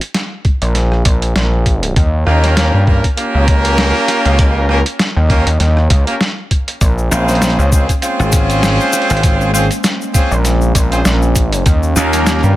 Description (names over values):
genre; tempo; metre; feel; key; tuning
glitch hop; 99 BPM; 4/4; swing 56% on 16ths; unclear; A4 = 439 Hz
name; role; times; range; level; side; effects
boom bap sampler-style drum kit; drums; 0.0-12.4 s; hi-hat, rim click, snare drum; -18 LUFS; equal; none
electronic kick drum; drums; 0.4-11.8 s; none; -13 LUFS; equal; none
gritty driven synth bass; bass; 0.6-12.6 s; Bb1 to G2; -13 LUFS; equal; distortion, tube saturation
brilliant horn section; stabs; 2.3-12.5 s; Bb3 to C5; -16 LUFS; equal; sidechain pumping, tape echo
warbly tape-like pad; sustained chords; 6.8-12.6 s; Eb3 to G4; -23 LUFS; right 1 dB; chorus, built-in reverb, sidechain pumping
cabasa; percussion; 6.8-12.5 s; none; -24 LUFS; left 5 dB; none
slap bass; bass; 7.1-12.4 s; Ab1 to Eb2; -15 LUFS; equal; none
room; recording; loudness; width
little or no reverb; none; -11 LUFS; side -15 dB against mid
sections
0.0-12.6 A section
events
none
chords
0.0 N.C.; 2.0 Eb7; 6.8 Bbm7; 11.7 Eb7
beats
0.15 0.75 1.36 | 1.97 2.57 3.18 3.78 | 4.39 5.00 5.60 6.21 | 6.81 7.42 8.03 8.63 | 9.24 9.84 10.45 11.06 | 11.66 12.27